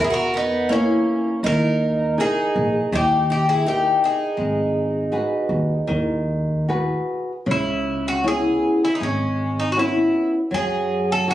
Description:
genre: fado-style ballad.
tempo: 79 BPM.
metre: 4/4.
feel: uneven beats, rubato.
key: G# minor, C# minor from 7.5 s.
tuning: A4 = 438 Hz.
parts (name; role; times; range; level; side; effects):
Irish bouzouki; melody; 0.0-11.3 s; C#4 to A#4; -22 LUFS; left 1 dB; plate reverb.
picked twelve-string acoustic guitar; second line; 0.0-6.7 s; A#3 to F#4; -24 LUFS; right 3 dB; none.
flamenco guitar; accompaniment; 0.0-11.3 s; C#3 to G5; -23 LUFS; left 1 dB; none.
upright bass; bass; 0.0-11.3 s; G#1 to F#2; -26 LUFS; equal; none.
room: moderate small room reverb, RT60 0.6 s.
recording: recorded on a phone in the room, club ambience, compression.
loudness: -18 LUFS.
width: side -13 dB against mid.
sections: 0.0-7.5 A section; 7.5-11.3 B section.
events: none.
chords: 0.0 A#dim; 1.4 D#sus4; 2.9 D#; 4.4 G#m7; 7.5 C#m7; 10.5 F#madd9.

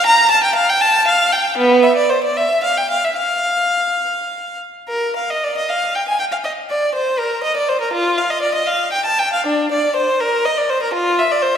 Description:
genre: classical, baroque-style suite movement for unaccompanied violin.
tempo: 65-83 BPM (dotted quarters).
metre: 6/8.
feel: rubato.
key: F major.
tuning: A4 = 440 Hz.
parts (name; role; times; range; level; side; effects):
clear violin; solo; 0.0-11.6 s; B3 to Bb5; -14 LUFS; equal; none.
room: wet concert hall reverb, RT60 2.0 s.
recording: heard from further back in the room.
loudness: -14 LUFS.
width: side -8 dB against mid.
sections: 0.0-4.9 A section; 4.9-11.6 A section.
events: none.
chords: none.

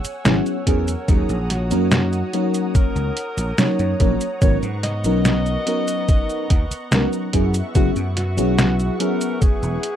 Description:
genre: vaporwave.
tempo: 72 BPM.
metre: 4/4.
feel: straight.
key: E lydian.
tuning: A4 = 440 Hz.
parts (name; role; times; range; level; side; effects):
lush unison pad; sustained chords; 0.0-10.0 s; B3 to E6; -32 LUFS; equal; chorus, vintage 12-bit sampler grit.
vintage slap bass; bass; 0.0-9.8 s; E1 to G#2; -22 LUFS; equal; tube saturation.
detuned 8-bit digital drum machine; drums; 0.0-10.0 s; cabasa, hi-hat, snare drum; -21 LUFS; right 1 dB; none.
FM electric piano with soft pad layer; accompaniment; 0.2-9.8 s; F#3 to A#4; -22 LUFS; left 1 dB; wide subtle chorus.
breathy alto saxophone; melody; 0.7-10.0 s; F#4 to D#5; -28 LUFS; equal; vintage 12-bit sampler grit, tape echo.
electronic kick drum; drums; 0.7-9.6 s; none; -17 LUFS; equal; none.
room: light reverb.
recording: rough home demo mix.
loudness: -17 LUFS.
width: side -10 dB against mid.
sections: 0.0-10.0 A section.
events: none.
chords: 0.0 E69; 1.1 D#m7; 4.4 G#m11; 7.3 E69.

